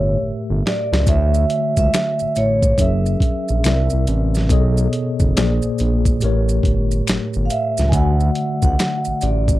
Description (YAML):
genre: R&B, neo-soul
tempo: 70 BPM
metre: 4/4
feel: swing 64% on 16ths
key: unclear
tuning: A4 = 442 Hz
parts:
  - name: vibraphone with medium mallets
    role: melody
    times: 0.0-9.6 s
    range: C#5 to G#5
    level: -21 LUFS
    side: right 2 dB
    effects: slapback echo
  - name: mellow tine electric piano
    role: accompaniment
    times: 0.0-9.6 s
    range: A2 to E5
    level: -22 LUFS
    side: left 1 dB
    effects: medium stereo tremolo
  - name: smooth synth bass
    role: bass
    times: 0.0-9.6 s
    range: F#1 to D2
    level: -18 LUFS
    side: equal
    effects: none
  - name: boom bap sampler-style drum kit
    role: drums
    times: 0.7-9.6 s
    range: hi-hat, kick drum, snare drum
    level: -19 LUFS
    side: equal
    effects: none
  - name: maracas and finger snaps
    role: percussion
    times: 1.1-9.6 s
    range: none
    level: -30 LUFS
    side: equal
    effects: none
room: little or no reverb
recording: dry, close 1970s-style studio recording, lossy compression artefacts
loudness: -15 LUFS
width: side -16 dB against mid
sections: 0.0-9.6 A section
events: drum fill 0.2-1.1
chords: 0.0 A7b9; 1.1 Dmaj9; 2.8 F#9; 3.6 C9; 4.5 B13; 5.4 A#9; 6.2 A7b9; 7.9 Dadd9